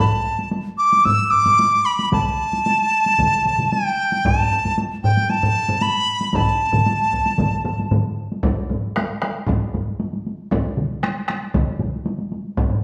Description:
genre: japanese traditional, taiko drum ensemble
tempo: 115 BPM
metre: 4/4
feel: straight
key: A suspended pentatonic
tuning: A4 = 440 Hz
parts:
  - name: dizi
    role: melody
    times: 0.0-7.9 s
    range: G5 to E6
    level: -20 LUFS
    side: equal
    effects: none
  - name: solo taiko drums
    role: percussion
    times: 0.4-12.8 s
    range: none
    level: -29 LUFS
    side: equal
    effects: none
  - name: taiko ensemble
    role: percussion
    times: 1.1-12.8 s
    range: none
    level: -25 LUFS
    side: equal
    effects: none
  - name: taiko ensemble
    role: percussion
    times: 2.1-11.9 s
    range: none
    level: -28 LUFS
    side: equal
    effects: none
  - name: taiko ensemble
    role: percussion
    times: 2.1-12.7 s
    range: none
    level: -27 LUFS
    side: equal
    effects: none
room: wet large studio reverb, RT60 1.3 s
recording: band playing live in one room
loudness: -20 LUFS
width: mono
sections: 0.0-8.4 A section; 8.4-12.8 B section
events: speeding up 0.0-12.8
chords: none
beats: | 0.00 0.53 1.06 1.59 | 2.13 2.66 3.19 3.71 | 4.24 4.77 5.29 5.82 | 6.34 6.87 7.39 7.91 | 8.43 8.95 9.47 9.99 | 10.51 11.03 11.54 12.06 | 12.57

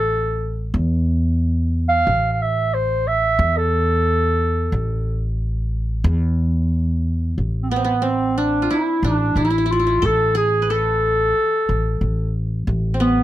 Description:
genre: Arabic maqam ensemble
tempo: 91 BPM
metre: 4/4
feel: straight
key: A maqam nahawand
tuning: A4 = 440 Hz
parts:
  - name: dark clarinet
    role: melody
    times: 0.0-13.2 s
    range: B3 to F5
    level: -19 LUFS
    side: equal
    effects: none
  - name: upright bass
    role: bass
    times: 0.0-13.2 s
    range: A1 to E2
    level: -20 LUFS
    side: equal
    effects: none
  - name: qanun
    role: second line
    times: 7.7-13.2 s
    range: B3 to B4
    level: -24 LUFS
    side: right 3 dB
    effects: none
room: little or no reverb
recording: close, detailed microphones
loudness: -17 LUFS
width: side -14 dB against mid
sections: 0.0-7.4 A section; 7.4-13.2 B section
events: none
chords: none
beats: 0.09 0.75 1.42 | 2.08 2.74 3.40 4.07 | 4.73 5.39 6.05 6.71 | 7.38 8.04 8.70 9.37 | 10.03 10.69 11.35 12.02 | 12.68

